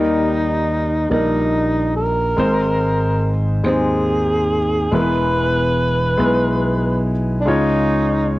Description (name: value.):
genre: slow gospel.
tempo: 47 BPM (dotted quarters).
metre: 6/8.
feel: straight.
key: unclear.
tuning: A4 = 440 Hz.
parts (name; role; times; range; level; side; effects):
breathy tenor saxophone; melody; 0.0-8.3 s; D4 to B4; -20 LUFS; equal; cassette tape, plate reverb.
warm grand piano; accompaniment; 0.0-8.4 s; Ab2 to Db5; -20 LUFS; left 1 dB; cassette tape, plate reverb.
slap bass; bass; 0.0-8.4 s; E1 to Eb2; -20 LUFS; equal; none.
room: moderate small room reverb, RT60 0.6 s.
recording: home recording on cassette.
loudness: -15 LUFS.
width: side -18 dB against mid.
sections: 0.0-8.4 A section.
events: none.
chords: 0.0 Eb; 2.4 Ab; 4.9 E; 7.5 Db.